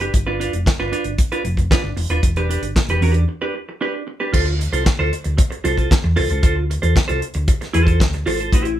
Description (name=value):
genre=disco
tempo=114 BPM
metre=4/4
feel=straight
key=unclear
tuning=A4 = 440 Hz
part: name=clean electric guitar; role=accompaniment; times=0.0-8.7 s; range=D4 to C5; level=-22 LUFS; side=right 2 dB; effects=none
part: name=hollow-body short-scale fingered electric bass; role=bass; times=0.0-8.8 s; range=D#1 to E2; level=-20 LUFS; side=equal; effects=none
part: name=damped 70s drum kit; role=drums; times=0.0-8.8 s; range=crash cymbal, handclaps, hi-hat, kick drum, snare drum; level=-18 LUFS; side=equal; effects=none
room=moderate studio reverb, RT60 0.6 s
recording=band playing live in one room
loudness=-16 LUFS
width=side -12 dB against mid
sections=0.0-4.3 A section; 4.3-8.8 B section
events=break 3.3-4.3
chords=0.1 G7; 2.2 Em7; 4.3 Dm7